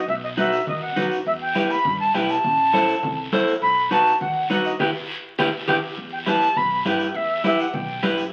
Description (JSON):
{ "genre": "latin, cumbia", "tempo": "204 BPM", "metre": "4/4", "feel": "straight", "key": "E harmonic minor", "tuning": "A4 = 440 Hz", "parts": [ { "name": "jazz flute", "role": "melody", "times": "0.0-8.2 s", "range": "D#5 to B5", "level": "-23 LUFS", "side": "equal", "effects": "none" }, { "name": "upright bass", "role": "bass", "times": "0.0-8.3 s", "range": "A1 to G2", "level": "-39 LUFS", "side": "equal", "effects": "none" }, { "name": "congas", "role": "percussion", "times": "0.1-8.2 s", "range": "none", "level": "-32 LUFS", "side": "equal", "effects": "none" }, { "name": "guiro", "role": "percussion", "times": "0.1-8.3 s", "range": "none", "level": "-39 LUFS", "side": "equal", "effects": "none" }, { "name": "clean electric guitar", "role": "accompaniment", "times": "0.4-8.2 s", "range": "D#4 to C5", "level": "-26 LUFS", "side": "equal", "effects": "spring reverb" } ], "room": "moderate studio reverb, RT60 0.8 s", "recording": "very old 78 rpm record, vinyl crackle", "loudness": "-21 LUFS", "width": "mono", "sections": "0.0-6.0 A section; 6.0-8.3 B section", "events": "band accent 4.8-6.0; drum fill 5.4-6.0", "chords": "0.0 B; 1.3 Em; 2.4 Am; 3.6 B7; 4.8 Em", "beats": "| 0.08 0.38 0.67 0.97 | 1.26 1.56 1.85 2.15 | 2.44 2.74 3.03 3.33 | 3.62 3.91 4.21 4.50 | 4.80 5.09 5.38 5.68 | 5.97 6.27 6.56 6.86 | 7.15 7.44 7.74 8.03" }